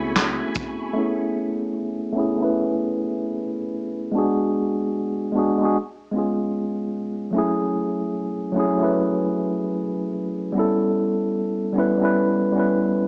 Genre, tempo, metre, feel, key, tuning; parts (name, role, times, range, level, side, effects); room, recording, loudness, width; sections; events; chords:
lo-fi hip hop; 75 BPM; 4/4; swing 66% on 16ths; A4 = 440 Hz
mellow tine electric piano; accompaniment; 0.0-13.1 s; F#3 to B4; -23 LUFS; equal; low-pass filter
phased string machine; sustained chords; 0.0-0.9 s; A3 to C#6; -36 LUFS; equal; ensemble chorus, phaser, low-pass filter
vintage brush drum kit; drums; 0.2-0.8 s; handclaps, hi-hat, kick drum, shaker, snare drum; -24 LUFS; equal; vintage 12-bit sampler grit
tube shaker; percussion; 0.2-0.8 s; barely audible
wet studio reverb, RT60 0.6 s; cassette tape, small speaker sound; -23 LUFS; mono
1.0-13.1 A section
filter sweep on tine electric piano 1.0-13.1
0.0 Amaj9; 4.2 G#m7b5; 5.8 C#7; 7.4 F#m7; 10.6 A7